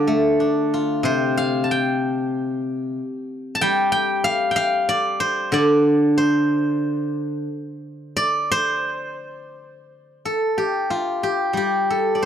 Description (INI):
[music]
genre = chinese traditional, Chinese solo plucked strings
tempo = 91 BPM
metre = 4/4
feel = uneven beats, rubato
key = C zhi mode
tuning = A4 = 440 Hz
[part]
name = steel-string zither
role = solo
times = 0.0-12.3 s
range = C3 to A5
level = -19 LUFS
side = equal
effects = none
[sound]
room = small room ambience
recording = dry, close 1970s-style studio recording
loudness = -18 LUFS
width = side -9 dB against mid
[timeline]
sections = 0.0-8.9 A section; 8.9-12.3 B section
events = none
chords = none